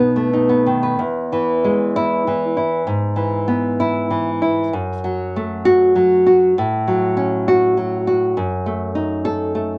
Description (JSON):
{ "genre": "romantic piece for solo classical guitar", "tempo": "98 BPM", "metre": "3/4", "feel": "uneven beats, rubato", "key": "E major", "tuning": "A4 = 440 Hz", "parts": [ { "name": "nylon-string guitar", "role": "solo", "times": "0.0-9.8 s", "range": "E2 to B4", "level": "-18 LUFS", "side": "equal", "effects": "none" } ], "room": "moderate small room ambience, RT60 0.5 s", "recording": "none", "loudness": "-18 LUFS", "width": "mono", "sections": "1.0-9.8 A section", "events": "none", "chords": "0.0 B; 1.0 E; 2.9 E/G#; 4.7 F#m; 6.6 F#m/A; 8.4 F#m6" }